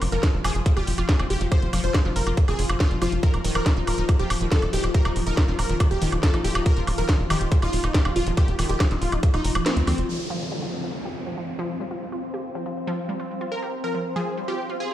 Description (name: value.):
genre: psychedelic trance.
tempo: 140 BPM.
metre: 4/4.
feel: straight.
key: unclear.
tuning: A4 = 438 Hz.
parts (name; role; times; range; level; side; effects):
pulsing gated texture; sustained chords; 0.0-14.9 s; F3 to F4; -31 LUFS; left 1 dB; chorus, built-in reverb, sidechain pumping.
tight sequencer bass; bass; 0.0-10.0 s; Eb1 to Eb2; -25 LUFS; equal; none.
drum and bass drum kit; drums; 0.0-10.1 s; hi-hat, snare drum, woodblock; -28 LUFS; equal; none.
supersaw stab; melody; 0.1-10.0, 13.5-14.9 s; C4 to C5; -30 LUFS; equal; phaser, sidechain pumping, tape echo.
wide unison pluck; riff; 0.1-14.9 s; Eb3 to G4; -32 LUFS; equal; auto-pan, sidechain pumping, ping-pong delay.
electronic kick drum; drums; 0.2-9.3 s; none; -19 LUFS; equal; none.
downlifter; sound effects; 10.1-13.5 s; none; -34 LUFS; left 1 dB; none.
granular cloud pad; texture; 10.9-14.9 s; C5 to C6; -35 LUFS; left 1 dB; built-in reverb, sidechain pumping.
room: light reverb, digital ambience.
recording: played on a big sound system in a bare room, stone room reverb.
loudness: -21 LUFS.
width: side -12 dB against mid.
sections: 0.0-10.1 A section; 10.1-14.9 B section.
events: kick drops out 9.7-10.1; band accent 9.7; filter sweep on synth arpeggio sound 10.1-14.9; filter sweep on synth texture 10.1-14.9.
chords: 0.0 F5; 3.2 Eb5; 10.1 F5.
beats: 0.23 0.66 1.09 | 1.52 1.95 2.37 2.80 | 3.23 3.66 4.09 4.52 | 4.95 5.37 5.80 6.23 | 6.66 7.09 7.52 7.95 | 8.37 8.80 9.23 9.66 | 10.09 10.52 10.95 11.37 | 11.80 12.23 12.66 13.09 | 13.52 13.95 14.37 14.80.